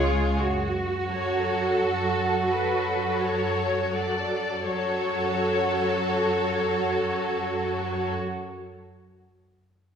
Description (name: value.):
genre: classical, slow romantic movement for string orchestra.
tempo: 43 BPM.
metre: 3/4.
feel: rubato.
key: F# minor.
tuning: A4 = 440 Hz.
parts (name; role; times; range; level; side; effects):
rich symphonic violin section; melody; 0.0-8.1 s; A4 to D5; -30 LUFS; left 4 dB; none.
warm symphonic violin section; second line; 0.0-8.1 s; G#4 to A4; -30 LUFS; left 1 dB; none.
rich symphonic viola section; accompaniment; 0.0-8.1 s; F#3 to G#3; -32 LUFS; equal; none.
rich symphonic cello section; bass; 0.0-8.1 s; E#4 to F#4; -28 LUFS; right 3 dB; none.
rich symphonic double bass section; bass; 0.0-8.1 s; C#2 to F#2; -32 LUFS; right 1 dB; none.
room: wet recital hall reverb, RT60 1.7 s.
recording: heard from further back in the room.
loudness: -23 LUFS.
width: side -7 dB against mid.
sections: 0.0-4.7 A section; 4.7-8.8 B section.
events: slowing down 0.0-4.7.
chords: 0.4 F#m.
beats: | 0.39 1.77 3.20 | 4.67 6.05 7.45.